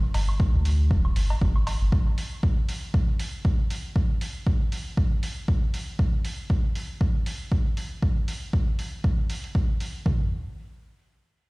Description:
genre	dub techno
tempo	118 BPM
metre	4/4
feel	swing 56% on 16ths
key	unclear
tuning	A4 = 440 Hz
part	soft dub sub bass	bass	0.0-1.9 s	D1 to D2	-23 LUFS	equal	sidechain pumping
part	electronic hi-hat	drums	0.1-9.9 s	none	-40 LUFS	right 1 dB	overdrive, dub echo
part	cowbell and woodblock	percussion	0.1-1.8 s	none	-40 LUFS	equal	sidechain pumping on perc, dub echo
part	deep house drum kit	drums	0.4-10.2 s	kick drum, toms	-24 LUFS	equal	overdrive
room	digital ambience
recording	played on a big sound system in a bare room, stone room reverb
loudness	-23 LUFS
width	side -25 dB against mid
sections	0.0-10.1 A section; 10.1-11.5 B section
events	none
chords	none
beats	0.40 0.91 1.41 | 1.92 2.43 2.94 3.45 | 3.96 4.46 4.97 5.48 | 5.99 6.50 7.01 7.52 | 8.02 8.53 9.04 9.55 | 10.06

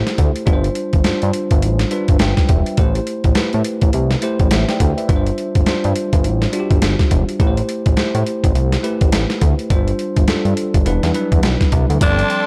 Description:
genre	R&B, new jack swing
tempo	104 BPM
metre	4/4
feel	swing 60% on 16ths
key	A minor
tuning	A4 = 440 Hz
part	bell-like tine electric piano	accompaniment	0.0-12.5 s	F3 to G5	-23 LUFS	equal	none
part	fat analog bass	bass	0.0-12.2 s	E1 to A2	-20 LUFS	equal	none
part	boom bap sampler-style drum kit	drums	0.1-12.5 s	hi-hat, kick drum, snare drum, tambourine	-19 LUFS	equal	none
part	growling tenor saxophone	melody	12.0-12.5 s	D4	-19 LUFS	equal	none
part	warm studio string section	sustained chords	12.0-12.5 s	A4 to C6	-27 LUFS	equal	none
room	light reverb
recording	dark, warm production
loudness	-17 LUFS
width	mono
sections	0.0-12.0 A section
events	tine electric piano fill 1.9-2.8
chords	0.5 G7sus4; 2.8 Am7; 5.1 G7sus4; 7.4 Am7; 9.7 G7sus4; 10.9 Em7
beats	| 0.47 1.05 1.63 2.20 | 2.78 3.36 3.94 4.51 | 5.09 5.67 6.24 6.82 | 7.40 7.97 8.55 9.13 | 9.70 10.28 10.86 11.44 | 12.01

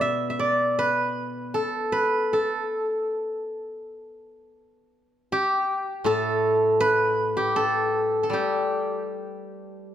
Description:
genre	chinese traditional, Chinese solo plucked strings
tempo	79 BPM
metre	4/4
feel	rubato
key	unclear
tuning	A4 = 437 Hz
part	steel-string zither	solo	0.0-9.9 s	A2 to E5	-22 LUFS	equal	none
room	moderate recital hall reverb, RT60 1.5 s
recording	none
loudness	-22 LUFS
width	side -10 dB against mid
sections	0.0-9.9 A section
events	none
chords	none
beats	0.00 0.78 1.55 | 2.32 3.08 3.83 4.57 | 5.30 6.05 6.79 7.54 | 8.30 9.08 9.86

